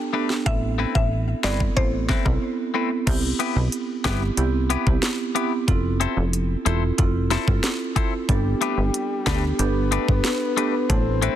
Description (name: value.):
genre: dancehall.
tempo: 92 BPM.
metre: 4/4.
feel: straight.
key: unclear.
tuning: A4 = 443 Hz.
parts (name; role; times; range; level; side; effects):
mallet-like synth pluck; melody; 0.0-2.2 s; C5 to G5; -30 LUFS; left 2 dB; chorus, tape echo.
marimba with medium mallets; accompaniment; 0.0-11.4 s; A3 to A4; -26 LUFS; right 6 dB; none.
clean electric guitar; arpeggios; 0.1-11.4 s; A3 to C5; -29 LUFS; left 11 dB; none.
afro-pop drum kit; drums; 0.3-11.4 s; crash cymbal, hi-hat, kick drum, rim click, snare drum; -24 LUFS; equal; overdrive.
plucky analog bass; bass; 0.5-11.3 s; E1 to D2; -23 LUFS; equal; none.
breathy flute-like synth lead; second line; 8.3-11.4 s; G4 to C5; -28 LUFS; left 7 dB; chorus, tape echo.
room: little or no reverb.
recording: dense, heavily limited modern master.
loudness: -20 LUFS.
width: side -11 dB against mid.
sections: 0.0-3.1 A section; 3.1-11.4 B section.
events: break 2.4-3.1.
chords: 0.5 Amadd9; 3.1 Cmaj7; 5.7 Fmaj7; 8.3 Gadd9.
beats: | 0.46 1.11 1.77 2.42 | 3.07 3.72 4.38 5.03 | 5.68 6.33 6.98 7.64 | 8.29 8.94 9.59 10.24 | 10.90.